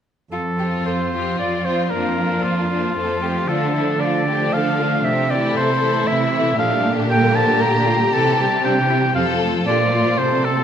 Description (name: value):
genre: quick classical-period movement for symphony orchestra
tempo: 116 BPM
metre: 3/4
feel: rubato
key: F major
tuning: A4 = 440 Hz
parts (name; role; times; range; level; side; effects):
- warm oboe; second line; 0.3-10.6 s; F4 to Bb5; -21 LUFS; equal; none
- warm studio violin section; second line; 0.3-10.6 s; D4 to Bb4; -25 LUFS; left 3 dB; none
- rich chamber cello section; bass; 0.3-10.6 s; F2 to D3; -22 LUFS; right 2 dB; none
- rich chamber violin section; melody; 0.6-10.6 s; C4 to A4; -26 LUFS; left 6 dB; none
- rich chamber viola section; accompaniment; 0.6-10.6 s; C3 to D4; -24 LUFS; right 2 dB; none
room: wet concert hall reverb, RT60 2.2 s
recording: none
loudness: -16 LUFS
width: side -8 dB against mid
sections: 0.3-10.6 A section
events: none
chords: 0.3 F; 1.9 Bb/F; 3.0 F; 3.5 Dm; 5.0 Am/C; 6.6 Gm7/Bb; 8.1 C; 9.2 F; 9.7 Bb